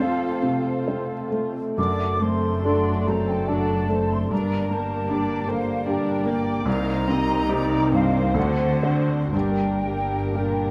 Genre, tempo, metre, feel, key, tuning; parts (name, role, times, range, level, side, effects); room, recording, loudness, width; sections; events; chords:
classical, romantic movement for piano and orchestra; 58-78 BPM; 3/4; rubato; G minor; A4 = 440 Hz
muted studio violin section; melody; 0.0-10.7 s; A4 to F5; -38 LUFS; equal
warm baby grand piano; melody; 0.0-10.7 s; C2 to C5; -27 LUFS; equal
hollow small flute group; second line; 0.0-10.7 s; F5 to D6; -32 LUFS; equal
muted studio violin section; second line; 0.0-10.7 s; A3 to D5; -36 LUFS; equal
muted studio viola section; accompaniment; 0.0-10.7 s; F#3 to G4; -34 LUFS; equal
dark French horn section; sustained chords; 0.0-10.7 s; A3 to Eb4; -31 LUFS; equal
muted studio cello section; bass; 1.8-10.7 s; F#2 to D3; -32 LUFS; equal
muted studio double bass section; bass; 1.8-10.7 s; F#1 to D2; -33 LUFS; equal
light reverb; close, detailed microphones; -23 LUFS; mono
0.0-10.7 A section
0.0 F; 1.8 D7/F#; 4.3 Gm; 6.7 Cm7; 8.4 D7; 9.3 Gm